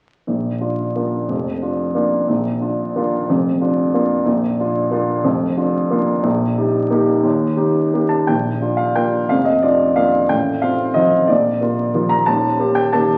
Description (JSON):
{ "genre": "classical, piano waltz", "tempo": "160-190 BPM", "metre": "3/4", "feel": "rubato", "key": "Bb major", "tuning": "A4 = 444 Hz", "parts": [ { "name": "warm upright piano", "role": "solo", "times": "0.3-13.2 s", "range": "Eb1 to Bb5", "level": "-18 LUFS", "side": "equal", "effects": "none" } ], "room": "wet recital hall reverb, RT60 1.7 s", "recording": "very old 78 rpm record, vinyl crackle, nothing above 10.4 kHz", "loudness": "-18 LUFS", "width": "mono", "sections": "0.3-8.3 A section; 8.3-13.2 B section", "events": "none", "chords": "0.3 Bb; 6.2 Eb/Bb; 8.3 Bb; 10.3 F/A; 11.3 Bb; 12.3 Eb" }